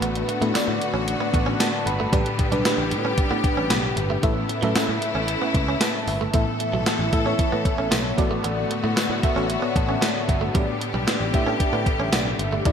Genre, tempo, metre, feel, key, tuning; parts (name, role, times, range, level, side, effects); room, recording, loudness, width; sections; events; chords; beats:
1980s-style pop; 114 BPM; 4/4; straight; A mixolydian; A4 = 440 Hz
FM electric piano with soft pad layer; accompaniment; 0.0-12.7 s; A2 to B5; -26 LUFS; equal; chorus, shimmer reverb
clear studio string section; sustained chords; 0.0-12.7 s; C#3 to A4; -28 LUFS; left 3 dB; shimmer reverb
direct-recorded clean electric guitar; riff; 0.0-12.7 s; F#3 to D4; -30 LUFS; right 4 dB; lush chorus, ping-pong delay, shimmer reverb
picked electric bass; bass; 0.0-12.7 s; G1 to A2; -28 LUFS; equal
gated 80s digital drum machine; drums; 0.0-12.7 s; hi-hat, kick drum, snare drum, tambourine; -24 LUFS; equal; gated reverb, gated reverb snare
moderate plate reverb, RT60 2.0 s; bright 1980s-style digital production; -20 LUFS; side -7 dB against mid
0.0-6.3 A section; 6.3-12.7 B section
FM electric piano fill 1.1-2.1, 5.5-6.3, 9.5-10.5
0.0 Bm7/A; 2.1 G/A; 4.2 Aadd9; 6.3 Asus2; 8.2 Bm7/A; 10.5 G/A
| 0.02 0.55 1.07 1.60 | 2.13 2.65 3.18 3.71 | 4.23 4.76 5.29 5.81 | 6.34 6.87 7.39 7.92 | 8.44 8.97 9.50 10.02 | 10.55 11.07 11.60 12.13 | 12.65